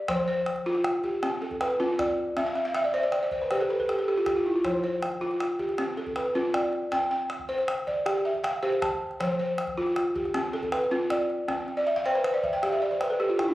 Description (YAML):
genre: west african traditional, West African string and xylophone music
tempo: 105 BPM (dotted quarters)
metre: 12/8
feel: straight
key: F lydian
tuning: A4 = 440 Hz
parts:
  - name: balafon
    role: arpeggios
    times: 0.0-13.5 s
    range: F3 to A5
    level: -25 LUFS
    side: equal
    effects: none
  - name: calabash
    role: percussion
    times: 0.1-13.5 s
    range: none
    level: -34 LUFS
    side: equal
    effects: none
room: wet recital hall reverb, RT60 1.4 s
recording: recorded on a phone in the room, club reverb, compression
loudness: -25 LUFS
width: side -16 dB against mid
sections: 0.1-13.5 A section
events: balafon fill 2.4-4.6, 11.8-13.5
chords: 0.1 F; 2.4 C5; 4.6 F; 6.9 C; 9.2 F; 11.5 C5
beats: | 0.09 0.66 1.23 1.80 | 2.37 2.94 3.51 4.08 | 4.64 5.21 5.78 6.35 | 6.92 7.49 8.06 8.63 | 9.21 9.78 10.35 10.92 | 11.49 12.06 12.63 13.20